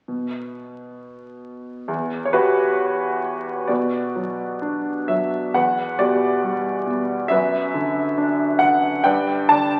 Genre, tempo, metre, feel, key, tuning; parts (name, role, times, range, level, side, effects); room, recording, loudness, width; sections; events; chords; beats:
classical, lyrical solo piano; 64-70 BPM; 4/4; rubato; B minor; A4 = 441 Hz
bright baby grand piano; solo; 0.1-9.8 s; E2 to A5; -21 LUFS; equal
wet concert hall reverb, RT60 2.1 s; very old 78 rpm record, vinyl crackle; -21 LUFS; mono
0.1-3.7 A section; 3.7-9.8 B section
0.1 N.C.; 1.9 Emadd9; 3.7 Bm; 5.5 Emadd9; 7.3 Bm/F#; 9.1 G
| 0.07 0.99 1.89 2.79 | 3.70 4.63 5.55 6.45 | 7.32 8.19 9.06